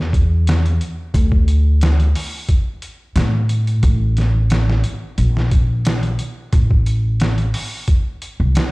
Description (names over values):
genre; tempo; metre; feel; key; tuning
trip hop; 89 BPM; 4/4; straight; unclear; A4 = 440 Hz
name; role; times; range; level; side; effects
upright bass; bass; 0.0-8.5 s; A1 to A2; -16 LUFS; equal; none
trip hop sampler-style drum kit; drums; 0.1-8.7 s; hi-hat, kick drum, snare drum; -18 LUFS; equal; none
room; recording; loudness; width
little or no reverb; played on a big sound system in a bare room, stone room reverb; -15 LUFS; side -23 dB against mid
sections
0.0-8.7 A section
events
none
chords
none